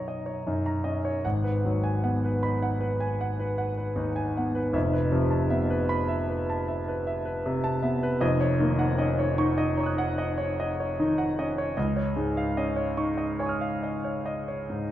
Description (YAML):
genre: classical, impressionist solo piano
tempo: 51 BPM (dotted quarters)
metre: 9/8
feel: uneven beats, rubato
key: unclear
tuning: A4 = 440 Hz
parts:
  - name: warm grand piano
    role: solo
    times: 0.0-14.9 s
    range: F1 to F#6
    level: -25 LUFS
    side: equal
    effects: none
room: wet recital hall reverb, RT60 1.5 s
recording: none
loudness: -25 LUFS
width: side -12 dB against mid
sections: 0.0-14.9 A section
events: none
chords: 0.0 Bmaj9; 1.2 G#m7; 4.8 Fmaj7#11; 8.2 D#m7/E#; 11.8 Dbadd9